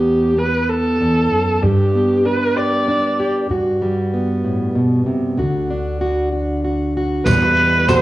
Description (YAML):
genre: acoustic folk duo or small band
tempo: 64 BPM (dotted quarters)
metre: 6/8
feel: straight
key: G major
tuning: A4 = 440 Hz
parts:
  - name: warm viola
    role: melody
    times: 0.0-3.3, 7.3-8.0 s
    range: G4 to D5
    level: -17 LUFS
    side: right 1 dB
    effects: none
  - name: fingerpicked plugged-in steel-string acoustic guitar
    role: accompaniment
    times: 0.0-8.0 s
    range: E2 to G4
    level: -18 LUFS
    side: equal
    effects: none
  - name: upright bass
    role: bass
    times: 0.0-8.0 s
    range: D2 to G2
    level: -24 LUFS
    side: right 1 dB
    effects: none
  - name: cloth-damped thuddy drum kit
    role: drums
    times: 7.3-8.0 s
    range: kick drum, ride cymbal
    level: -25 LUFS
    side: equal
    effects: cassette tape
  - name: cajon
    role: percussion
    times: 7.3-8.0 s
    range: none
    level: -21 LUFS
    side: right 2 dB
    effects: none
  - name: tambourine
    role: percussion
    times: 7.3-8.0 s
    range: none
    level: -34 LUFS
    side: right 2 dB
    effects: none
room: light reverb, small room ambience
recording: home recording on cassette, small room reverb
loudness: -15 LUFS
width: side -15 dB against mid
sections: 0.0-7.3 A section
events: none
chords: 0.0 Emadd9; 1.6 G; 3.5 Gmaj9; 5.4 D; 7.3 Emadd9